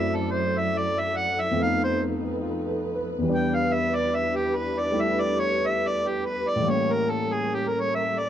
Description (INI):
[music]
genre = jazz ballad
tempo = 71 BPM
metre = 4/4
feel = swing 66% on 8ths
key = unclear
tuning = A4 = 440 Hz
[part]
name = overdriven harmonica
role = melody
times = 0.0-8.3 s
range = G4 to G5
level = -25 LUFS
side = equal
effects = none
[part]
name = warm concert grand piano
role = accompaniment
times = 0.0-8.3 s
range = E2 to B4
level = -27 LUFS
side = left 1 dB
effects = none
[part]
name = dark studio string section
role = sustained chords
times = 0.0-8.3 s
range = E3 to D5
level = -31 LUFS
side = right 1 dB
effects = none
[sound]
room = light reverb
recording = dark, warm production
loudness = -22 LUFS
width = side -10 dB against mid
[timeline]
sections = 0.0-8.3 A section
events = harmonica solo 0.0-8.3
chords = 0.0 F#m7b5; 1.6 F7#11; 3.2 Em7; 6.6 A7b9